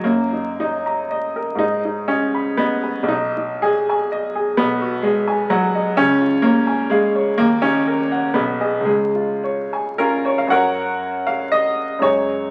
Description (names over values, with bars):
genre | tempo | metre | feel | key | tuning
classical, romantic character piece for solo piano | 100-133 BPM | 3/4 | rubato | F# major from 4.6 s | A4 = 439 Hz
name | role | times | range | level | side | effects
clear baby grand piano | solo | 0.0-12.5 s | Cb2 to Cb6 | -19 LUFS | equal | none
room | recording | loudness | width
wet large studio reverb, RT60 1.1 s | very old 78 rpm record, vinyl crackle | -19 LUFS | mono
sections
0.0-10.5 A section; 10.5-12.5 B section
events
none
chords
0.1 Ebm/Gb; 1.6 Abm; 3.1 Abm/Cb; 4.6 G#m7/B; 6.0 C#; 7.4 D#m; 8.4 G#m/B; 8.9 C#; 10.5 F#